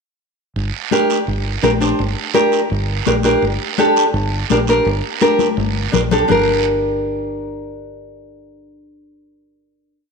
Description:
latin, cumbia; 167 BPM; 4/4; straight; G minor; A4 = 443 Hz
fingered electric bass; bass; 0.6-10.1 s; G1 to Bb1; -21 LUFS; right 1 dB
congas; percussion; 0.6-6.4 s; -23 LUFS; left 12 dB
guiro; percussion; 0.6-6.4 s; -26 LUFS; right 14 dB
nylon-string guitar; accompaniment; 0.9-10.1 s; D4 to C5; -16 LUFS; equal
moderate echo chamber reverb, RT60 1.9 s, studio ambience; 1960s-style stereo with parts hard left and right; -14 LUFS; side -5 dB against mid
0.6-6.3 A section; 6.3-9.2 final chord
drum fill 5.4-6.3
0.6 Gm

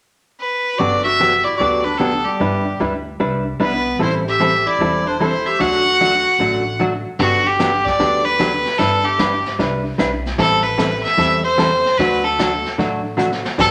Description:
country, western swing; 150 BPM; 4/4; swing 67% on 8ths; G major; A4 = 439 Hz
bright fiddle; melody; 0.4-13.7 s; F#4 to F#5; -19 LUFS; equal
breathy clarinet; second line; 0.8-6.8 s; G3 to G4; -26 LUFS; equal
hollow-body jazz guitar; accompaniment; 0.8-13.7 s; D3 to B4; -22 LUFS; equal
upright bass; bass; 0.8-13.7 s; E1 to E2; -31 LUFS; equal
vintage brush drum kit; drums; 7.2-13.7 s; brushed snare drum, crash cymbal, hi-hat, kick drum, snare drum, toms; -29 LUFS; equal
wet large studio reverb, RT60 1.0 s; -17 LUFS; mono
0.8-7.2 A section; 7.2-13.7 B section
drum fill 13.2-13.6
0.0 N.C.; 0.8 Gmaj7; 2.4 Em7/G; 4.0 Am7; 5.6 D; 7.2 Gmaj7; 8.8 Em7/G; 10.4 Am7; 12.0 D

